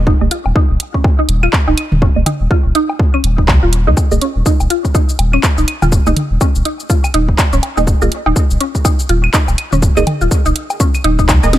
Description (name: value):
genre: minimal techno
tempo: 123 BPM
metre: 4/4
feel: swing 59% on 16ths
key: unclear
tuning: A4 = 435 Hz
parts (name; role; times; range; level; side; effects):
- filtered dub chord stab; stabs; 0.0-11.5 s; Bb3 to Eb5; -20 LUFS; right 4 dB; phaser, cassette tape, dub echo
- saturated sub bass; bass; 0.0-11.6 s; Eb1 to Eb2; -14 LUFS; equal; tube saturation, sidechain pumping
- mallet-like synth pluck; riff; 0.1-11.6 s; Db4 to F4; -19 LUFS; equal; wide subtle chorus, sidechain pumping, ping-pong delay
- electronic kick drum; drums; 0.1-11.4 s; none; -13 LUFS; equal; overdrive
- house drum kit; drums; 0.3-11.6 s; handclaps, hi-hat, shaker, snare drum; -19 LUFS; equal; overdrive
- electronic woodblock, claves and toms; percussion; 0.5-11.4 s; none; -20 LUFS; equal; dub echo
room: little or no reverb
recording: none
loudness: -11 LUFS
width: side -13 dB against mid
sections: 0.0-11.6 A section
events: filter sweep on synth arpeggio sound 0.0-11.6; filter sweep on synth stab 0.0-11.6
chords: none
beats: | 0.07 0.56 1.04 1.53 | 2.02 2.51 3.00 3.48 | 3.97 4.46 4.95 5.43 | 5.92 6.41 6.90 7.39 | 7.87 8.36 8.85 9.34 | 9.82 10.31 10.80 11.29